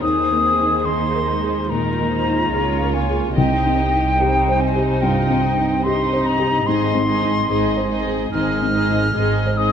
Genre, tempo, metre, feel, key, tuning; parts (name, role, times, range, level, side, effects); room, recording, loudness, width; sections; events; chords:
cinematic, emotional film score for orchestra; 72 BPM; 4/4; rubato; Ab major; A4 = 443 Hz
muted studio violin section; second line; 0.0-9.7 s; Eb4 to Eb5; -26 LUFS; left 6 dB
silver concert flute; second line; 0.0-9.7 s; G5 to F6; -21 LUFS; left 2 dB
felt-muted upright piano; accompaniment; 0.0-9.7 s; C2 to C5; -22 LUFS; left 2 dB
muted studio viola section; accompaniment; 0.0-9.7 s; G3 to Ab4; -26 LUFS; right 3 dB
muted studio cello section; bass; 0.0-9.7 s; Ab2 to Eb3; -26 LUFS; right 4 dB
muted studio double bass section; bass; 0.0-9.7 s; Ab1 to Eb2; -25 LUFS; right 3 dB
moderate scoring stage reverb, RT60 1.6 s; close, detailed microphones; -16 LUFS; side -8 dB against mid
0.0-9.7 A section
0.0 Ebsus4; 3.4 Cm; 6.7 Ab